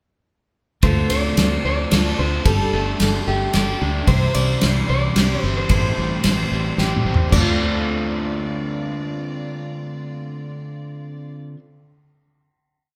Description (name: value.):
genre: folk rock and heartland rock.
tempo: 111 BPM.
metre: 3/4.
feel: straight.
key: D minor.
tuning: A4 = 435 Hz.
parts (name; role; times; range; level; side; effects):
electric guitar through a small old amp; melody; 0.8-11.5 s; G4 to D5; -29 LUFS; equal; none.
picked steel-string acoustic guitar; accompaniment; 0.8-11.6 s; A2 to C5; -29 LUFS; equal; none.
crunchy overdriven guitar; riff; 0.8-11.6 s; A2 to A4; -29 LUFS; equal; none.
fingered electric bass; bass; 0.8-11.5 s; G1 to D2; -25 LUFS; equal; none.
unplugged drum kit; drums; 0.8-7.5 s; crash cymbal, kick drum, ride cymbal, snare drum, toms; -22 LUFS; equal; none.
warm chamber string section; sustained chords; 4.1-11.3 s; G3 to D5; -38 LUFS; equal; none.
room: moderate large studio reverb, RT60 1.5 s.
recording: band playing live in one room.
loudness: -20 LUFS.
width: mono.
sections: 0.8-7.3 verse; 7.3-10.6 final chord.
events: drum fill 6.8-7.3.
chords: 0.8 Dm7; 2.5 Gsus2; 4.1 C; 5.7 Am7; 7.3 Dm7.